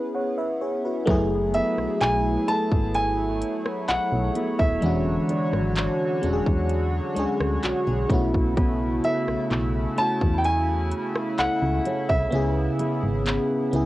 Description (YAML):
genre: contemporary R&B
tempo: 64 BPM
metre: 4/4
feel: straight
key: F# minor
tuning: A4 = 435 Hz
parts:
  - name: FM electric piano with soft pad layer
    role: accompaniment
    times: 0.0-13.9 s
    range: G#3 to F#5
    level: -27 LUFS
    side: left 1 dB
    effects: chorus, cassette tape
  - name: chorused pulse-width pad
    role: sustained chords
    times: 1.1-13.9 s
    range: C#3 to C#5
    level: -29 LUFS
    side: equal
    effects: cassette tape
  - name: nylon-string guitar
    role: arpeggios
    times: 1.1-13.9 s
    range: C#3 to C#5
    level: -30 LUFS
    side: right 2 dB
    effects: cassette tape, tape echo
  - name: solid FM bass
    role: bass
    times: 1.1-13.9 s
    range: D#1 to E2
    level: -27 LUFS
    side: equal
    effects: none
  - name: trap drum kit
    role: drums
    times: 1.1-13.9 s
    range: handclaps, hi-hat, kick drum, rim click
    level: -25 LUFS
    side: equal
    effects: cassette tape
  - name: clear grand piano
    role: melody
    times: 1.5-13.9 s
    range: E5 to A5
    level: -26 LUFS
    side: equal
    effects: cassette tape, tape echo
room: little or no reverb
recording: home recording on cassette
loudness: -21 LUFS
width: side -16 dB against mid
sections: 0.0-13.9 A section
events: none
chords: 0.0 C#m7; 1.1 F#m11; 4.8 E13; 8.1 B9sus4; 12.3 C#m7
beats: 0.13 | 1.07 2.01 2.95 3.88 | 4.82 5.76 6.70 7.63 | 8.57 9.51 10.45 11.38 | 12.32 13.26